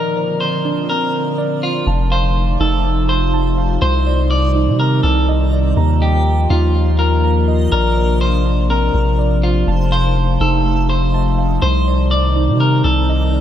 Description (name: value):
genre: hip hop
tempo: 123 BPM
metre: 4/4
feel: half-time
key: unclear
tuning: A4 = 440 Hz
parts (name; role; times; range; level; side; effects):
- clean electric guitar; melody; 0.0-13.1 s; F4 to D5; -20 LUFS; left 1 dB; spring reverb, digital delay
- warbly tape-like pad; sustained chords; 0.0-13.4 s; Bb2 to F4; -20 LUFS; equal; chorus, built-in reverb
- muted felt-like synth keys; arpeggios; 0.0-13.4 s; A3 to Bb5; -24 LUFS; right 8 dB; chorus, digital delay
- backwards swelling texture; texture; 0.0-13.4 s; A3 to Eb5; -32 LUFS; left 2 dB; built-in reverb
- long sustained 808-style bass; bass; 1.9-13.4 s; F1 to C3; -15 LUFS; equal; none
room: light reverb, digital ambience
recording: none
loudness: -13 LUFS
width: side -10 dB against mid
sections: 0.0-1.9 A section; 1.9-13.4 B section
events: none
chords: 0.0 Bbadd9; 1.9 F7; 3.8 Cmadd9; 5.8 Ebsus2; 7.7 Bbadd9; 9.7 F7; 11.6 Cmadd9